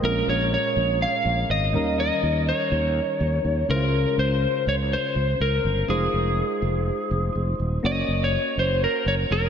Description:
1980s-style pop; 123 BPM; 4/4; swing 55% on 16ths; A4 = 438 Hz
lightly driven lead guitar; melody; 0.0-9.5 s; Ab4 to F5; -24 LUFS; equal; wide subtle chorus, diffuse ambient delay
soft electric-piano-like synth keys; accompaniment; 0.0-9.5 s; Bb2 to Eb5; -28 LUFS; left 1 dB; chorus
sustaining fretless electric bass; bass; 0.0-9.5 s; Eb1 to Eb2; -24 LUFS; equal
wet lush hall reverb, RT60 2.5 s; dreamy mix soaked in reverb; -21 LUFS; side -8 dB against mid
0.0-7.8 A section; 7.8-9.5 B section
0.0 Bbm7; 1.7 Eb7; 3.7 Dbmaj7; 5.9 Fm7; 7.8 Gb
| 0.04 0.52 1.01 1.50 | 1.99 2.48 2.96 3.45 | 3.94 4.43 4.91 5.40 | 5.89 6.38 6.87 7.35 | 7.84 8.33 8.82 9.30

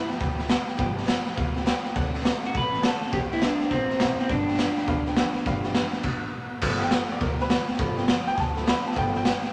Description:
rockabilly; 206 BPM; 4/4; swing 63% on 8ths; G mixolydian; A4 = 440 Hz
electric guitar through a small old amp; melody; 0.0-0.1, 2.5-6.3 s; C4 to B4; -30 LUFS; equal
clear upright piano; accompaniment; 0.0-9.5 s; F3 to B5; -35 LUFS; equal
picked steel-string acoustic guitar; accompaniment; 0.0-9.5 s; G2 to A4; -37 LUFS; equal
upright bass; bass; 0.1-9.5 s; G1 to D2; -36 LUFS; equal
raw garage drum kit; drums; 0.1-9.5 s; crash cymbal, hi-hat, kick drum, snare drum; -28 LUFS; equal
moderate club reverb, RT60 0.5 s; -25 LUFS; mono
0.0-6.6 A section; 6.6-9.5 B section
stop 6.0-6.6; upright piano solo 6.6-9.5
0.0 G7; 2.0 D7; 3.1 C7; 4.3 G7
0.20 0.50 | 0.79 1.08 1.38 1.67 | 1.96 2.25 2.54 2.84 | 3.13 3.42 3.71 4.00 | 4.30 4.59 4.88 5.17 | 5.46 5.76 6.05 6.34 | 6.63 6.92 7.21 7.51 | 7.80 8.09 8.38 8.67 | 8.96 9.26

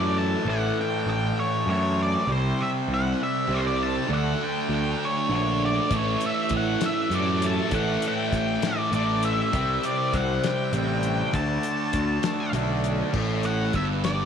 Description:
psychedelic rock; 66 BPM (dotted quarters); 6/8; straight; A4 = 440 Hz
octave-fuzz lead guitar; melody; 0.0-14.3 s; C5 to A5; -28 LUFS; left 1 dB; distortion, tape echo
overdriven combo organ; sustained chords; 0.0-13.1 s; F#3 to B5; -38 LUFS; right 8 dB
thick fuzz guitar; riff; 0.0-14.3 s; G2 to D4; -26 LUFS; equal; distortion, phaser
fuzz picked electric bass; bass; 0.0-14.3 s; G1 to F#2; -27 LUFS; equal; overdrive
cloth-damped thuddy drum kit; drums; 5.9-14.2 s; crash cymbal, hi-hat, kick drum, snare drum; -31 LUFS; left 4 dB
moderate echo chamber reverb, RT60 1.6 s, small room reverb; 1960s-style stereo; -22 LUFS; side -8 dB against mid
0.0-13.1 A section; 13.1-14.3 B section
lead electric guitar solo 13.1-14.3
0.0 Asus4; 2.3 Cmaj7; 4.1 D; 5.9 Asus4; 9.5 Cmaj7; 11.3 Dmaj7; 13.1 N.C.
| 0.47 1.37 | 2.28 3.19 | 4.09 5.00 | 5.91 6.81 | 7.72 8.62 | 9.53 10.43 | 11.34 12.24 | 13.14 14.04

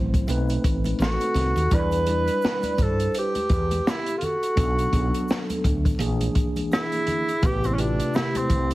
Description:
hip hop, jazz-hop; 84 BPM; 4/4; swing 59% on 16ths; A4 = 440 Hz
mellow tine electric piano; accompaniment; 0.0-8.7 s; C3 to D5; -28 LUFS; equal; medium stereo tremolo
woody fretless electric bass; bass; 0.0-8.7 s; A1 to G2; -25 LUFS; equal; lush chorus
open jazz drum kit; drums; 0.1-8.7 s; hi-hat, kick drum, snare drum; -25 LUFS; equal; vintage 12-bit sampler grit
tube shaker and congas; percussion; 0.1-8.7 s; -37 LUFS; equal
breathy tenor saxophone; melody; 1.0-8.7 s; C4 to B4; -26 LUFS; equal
vibraphone with soft mallets; second line; 1.0-8.7 s; E4 to D5; -31 LUFS; right 1 dB
light reverb, studio reverb; heavily compressed radio sound, multiband compression, vinyl crackle; -21 LUFS; side -18 dB against mid
0.0-8.7 A section
0.3 B7b9; 1.7 Em7; 4.6 Bm7; 6.0 Bb7#11; 7.4 Am9
0.28 1.00 | 1.71 2.43 3.14 3.85 | 4.57 5.28 6.00 6.71 | 7.43 8.14

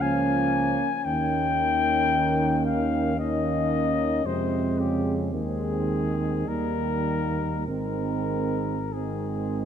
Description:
classical, hymn-like piece for brass band; 47-58 BPM; 3/4; rubato; Ab major; A4 = 440 Hz
mellow cornet; melody; 0.0-9.7 s; G4 to Ab5; -28 LUFS; left 7 dB
dark French horn section; second line; 0.0-9.7 s; Bb3 to Db4; -29 LUFS; right 5 dB
clear trombone; accompaniment; 0.0-9.7 s; C3 to F3; -32 LUFS; right 3 dB
clear trombone section; accompaniment; 0.0-9.7 s; G3 to Bb3; -33 LUFS; left 3 dB
dark tuba; bass; 0.0-9.7 s; Ab1 to F2; -29 LUFS; right 1 dB
wet concert hall reverb, RT60 2.6 s; -23 LUFS; side -8 dB against mid
0.0-9.7 A section
0.0 Bbm7/Db; 1.1 Eb7; 4.3 Fm; 5.3 Ab/Eb; 6.5 Eb; 7.7 Ab
0.01 | 1.06 2.10 3.18 | 4.25 5.33 6.47 | 7.67 8.93

